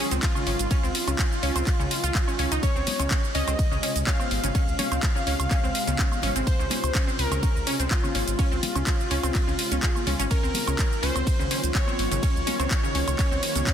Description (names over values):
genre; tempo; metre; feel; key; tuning
progressive house; 125 BPM; 4/4; straight; Db major; A4 = 440 Hz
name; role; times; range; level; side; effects
plucky unison lead; melody; 0.0-13.7 s; F4 to F5; -31 LUFS; equal; sidechain pumping, ping-pong delay
evolving wavetable pad; sustained chords; 0.0-13.7 s; C3 to F4; -34 LUFS; equal; chorus, built-in reverb, sidechain pumping
wide unison pluck; arpeggios; 0.0-13.7 s; Db3 to Ab5; -30 LUFS; equal; sidechain pumping, ping-pong delay
round analog bass; bass; 0.1-13.6 s; Ab1 to Db2; -28 LUFS; equal; sidechain pumping
house drum kit; drums; 0.1-13.7 s; handclaps, hi-hat, ride cymbal, shaker, woodblock; -29 LUFS; right 1 dB; studio reverb
electronic kick drum; drums; 0.2-13.7 s; none; -24 LUFS; equal; studio reverb
congas; percussion; 2.9-13.6 s; none; -35 LUFS; left 4 dB; sidechain pumping on perc
room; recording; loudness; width
little or no reverb; dense, heavily limited modern master; -22 LUFS; side -9 dB against mid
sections
0.0-13.7 A section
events
none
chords
0.0 Ebmadd9; 2.6 Dbmaj7; 10.3 Ebmadd9